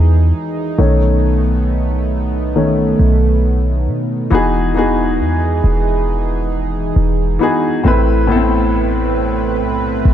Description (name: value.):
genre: contemporary R&B.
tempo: 68 BPM.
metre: 4/4.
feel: swing 58% on 16ths.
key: E major.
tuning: A4 = 440 Hz.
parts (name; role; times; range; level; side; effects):
warm baby grand piano; accompaniment; 0.0-10.1 s; A2 to B4; -17 LUFS; left 2 dB; none.
chorused pulse-width pad; sustained chords; 0.0-10.1 s; E3 to B4; -20 LUFS; right 4 dB; none.
clean 808-style bass; bass; 0.0-10.1 s; E1 to B2; -15 LUFS; equal; none.
room: little or no reverb.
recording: none.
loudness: -13 LUFS.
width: side -10 dB against mid.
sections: 0.0-4.3 A section; 4.3-10.1 B section.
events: grand piano solo 0.0-4.3.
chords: 0.0 Emaj7; 0.8 B7; 4.3 Emaj7; 7.8 Amadd9.